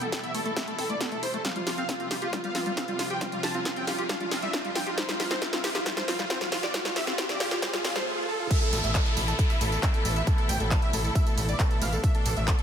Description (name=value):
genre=uplifting trance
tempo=136 BPM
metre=4/4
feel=straight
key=A minor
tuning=A4 = 440 Hz
part: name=dense compressed supersaw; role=melody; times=0.0-12.6 s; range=F4 to A5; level=-32 LUFS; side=right 1 dB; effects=vintage 12-bit sampler grit, sidechain pumping, low-pass filter, tape echo
part: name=clear symphonic string section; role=sustained chords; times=0.0-12.6 s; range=B2 to F4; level=-36 LUFS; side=left 1 dB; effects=sidechain pumping
part: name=liquid acid bass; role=arpeggios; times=0.0-8.0 s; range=G3 to G4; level=-36 LUFS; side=left 1 dB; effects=chorus, cassette tape, sidechain pumping, tape echo
part: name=big-room dance drum kit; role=drums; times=0.0-12.6 s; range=crash cymbal, handclaps, hi-hat, snare drum, tambourine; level=-31 LUFS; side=equal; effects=none
part: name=riser, swell and downlifter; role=sound effects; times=0.0-12.0 s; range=none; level=-36 LUFS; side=equal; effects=none
part: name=electronic kick drum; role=drums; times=0.1-12.6 s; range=none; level=-26 LUFS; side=equal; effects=high-pass filter on kick
part: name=gritty driven synth bass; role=bass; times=8.7-12.5 s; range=A1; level=-28 LUFS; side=equal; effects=sidechain pumping
room=light reverb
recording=high-pass filter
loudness=-25 LUFS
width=side -8 dB against mid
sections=0.0-8.5 A section; 8.5-12.6 B section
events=build-up 0.0-8.5; drum fill 0.0-8.1; riser 0.0-8.5; filter sweep on acid bass 0.0-8.5; swell 7.6-8.5; drop 8.5-12.6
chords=0.0 Asus2; 1.4 Fsus2; 8.5 Asus2